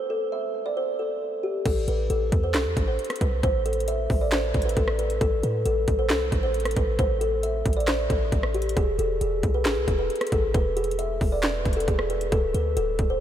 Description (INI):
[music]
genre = hip hop, trap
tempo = 135 BPM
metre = 4/4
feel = half-time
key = A minor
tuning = A4 = 440 Hz
[part]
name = kalimba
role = melody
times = 0.0-13.2 s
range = G4 to E5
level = -26 LUFS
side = equal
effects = low-pass filter, tape echo
[part]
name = warm 808-style bass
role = bass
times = 1.7-13.2 s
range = D1 to A2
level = -27 LUFS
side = equal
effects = none
[part]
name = trap drum kit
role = drums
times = 1.7-13.1 s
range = crash cymbal, handclaps, hi-hat, kick drum, rim click, snare drum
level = -26 LUFS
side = equal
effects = none
[sound]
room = light reverb, digital ambience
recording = none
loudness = -22 LUFS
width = side -10 dB against mid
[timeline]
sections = 0.0-1.7 A section; 1.7-13.2 B section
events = filter sweep on kalimba 0.0-1.7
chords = 0.0 N.C.; 1.7 Am; 8.8 E; 12.3 D5